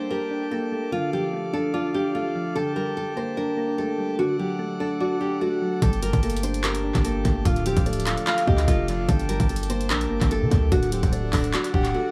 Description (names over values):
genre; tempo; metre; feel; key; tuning
hip hop, trap; 147 BPM; 4/4; half-time; G minor; A4 = 438 Hz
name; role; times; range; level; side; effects
nylon-string guitar; melody; 0.0-12.1 s; F4 to C5; -30 LUFS; equal; tape echo
soft electric-piano-like synth keys; accompaniment; 0.0-12.1 s; D3 to F5; -30 LUFS; equal; chorus, tape echo
pipe organ, foundations; sustained chords; 0.0-12.1 s; G4 to D6; -37 LUFS; equal; none
warm 808-style bass; bass; 5.8-11.9 s; D1 to D3; -27 LUFS; equal; none
trap drum kit; drums; 5.8-11.9 s; handclaps, hi-hat, kick drum; -27 LUFS; equal; overdrive, tape echo
breathy flute-like synth lead; second line; 7.7-12.1 s; C5 to F#5; -36 LUFS; equal; chorus, tape echo
room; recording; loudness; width
little or no reverb; echo-heavy mix; -24 LUFS; mono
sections
0.0-12.1 A section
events
break 11.9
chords
0.0 Gmadd9; 0.9 Dm; 2.6 Gmadd9; 4.2 D; 5.8 Gmadd9; 7.5 Dm; 9.1 Gmadd9; 10.7 D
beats
0.11 0.52 | 0.92 1.33 1.74 2.15 | 2.56 2.96 3.37 3.78 | 4.19 4.60 5.00 5.41 | 5.82 6.23 6.64 7.05 | 7.45 7.86 8.27 8.68 | 9.09 9.49 9.90 10.31 | 10.72 11.13 11.54 11.94